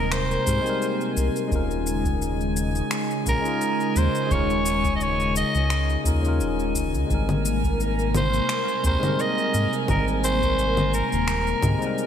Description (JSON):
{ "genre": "sunset chillout", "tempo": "86 BPM", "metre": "4/4", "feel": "swing 54% on 16ths", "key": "Ab major", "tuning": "A4 = 440 Hz", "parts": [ { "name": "raspy soprano saxophone", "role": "melody", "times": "0.0-12.1 s", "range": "Bb4 to Eb5", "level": "-26 LUFS", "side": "equal", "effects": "digital delay" }, { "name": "tine electric piano", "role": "accompaniment", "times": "0.0-12.1 s", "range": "G3 to Bb4", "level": "-28 LUFS", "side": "moving between left 5 dB and right 4 dB", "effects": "auto-pan, digital delay" }, { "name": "airy breathy pad", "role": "sustained chords", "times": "0.0-12.1 s", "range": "C3 to Bb4", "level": "-28 LUFS", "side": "left 1 dB", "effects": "chorus, phaser" }, { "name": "round analog bass", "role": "bass", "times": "0.0-11.8 s", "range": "Eb1 to Ab2", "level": "-25 LUFS", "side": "equal", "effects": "none" }, { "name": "drifting glass-harmonics texture", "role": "texture", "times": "0.0-12.1 s", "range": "Ab5", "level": "-35 LUFS", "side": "right 1 dB", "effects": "chorus, built-in reverb" }, { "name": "electronic finger snaps, shaker and congas", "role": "drums", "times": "0.1-12.1 s", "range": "none", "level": "-30 LUFS", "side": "left 2 dB", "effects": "overdrive, gated reverb" }, { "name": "electronic kick drum", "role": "drums", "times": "0.5-11.8 s", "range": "none", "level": "-28 LUFS", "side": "equal", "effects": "none" } ], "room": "moderate lush hall reverb, RT60 2.0 s", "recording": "bright 1980s-style digital production", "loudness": "-21 LUFS", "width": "side -9 dB against mid", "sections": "0.0-12.1 A section", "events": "none", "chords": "0.0 Abmaj9; 1.5 Eb7sus4; 7.1 Abmaj9" }